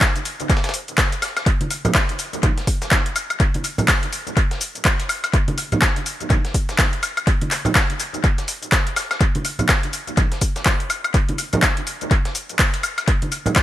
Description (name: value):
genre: house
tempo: 124 BPM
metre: 4/4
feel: swing 60% on 16ths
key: none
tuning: none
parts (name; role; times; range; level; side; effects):
- breakbeat sampler-style drum kit; drums; 0.0-13.6 s; hi-hat, snare drum; -30 LUFS; equal; high-pass filter on snare, small room ambience, sidechain pumping on hats, high-pass filter on hats, high-pass filter on room
- deep house drum kit; drums; 0.0-13.6 s; handclaps, hi-hat, shaker, woodblock; -21 LUFS; left 1 dB; overdrive, small room ambience, tape echo
- electronic kick drum; drums; 0.0-13.6 s; none; -18 LUFS; equal; overdrive, small room ambience
- congas; percussion; 1.6-13.5 s; none; -25 LUFS; right 2 dB; tape echo
room: little or no reverb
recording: echo-heavy mix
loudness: -17 LUFS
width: side -13 dB against mid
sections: 0.0-13.6 A section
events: none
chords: none